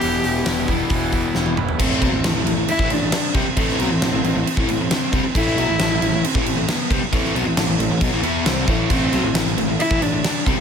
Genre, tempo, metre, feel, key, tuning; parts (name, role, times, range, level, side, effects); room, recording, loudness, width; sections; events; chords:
quiet-loud alternative rock; 135 BPM; 4/4; straight; A minor; A4 = 440 Hz
dark cello; melody; 0.0-10.6 s; B3 to G4; -24 LUFS; equal; analog delay
twangy electric guitar; arpeggios; 0.0-1.8 s; E2 to E4; -27 LUFS; right 9 dB; lush chorus
overdriven electric guitar; riff; 0.0-10.6 s; E2 to E4; -22 LUFS; left 2 dB
fuzz picked electric bass; bass; 0.0-10.6 s; E1 to E2; -26 LUFS; equal; overdrive
huge arena drum kit; drums; 0.0-10.6 s; crash cymbal, hi-hat, kick drum, snare drum, toms; -21 LUFS; equal
light reverb; -17 LUFS; side -7 dB against mid
0.0-1.8 A section; 1.8-10.6 B section
drum fill 1.3-1.8
0.0 Em; 1.8 Am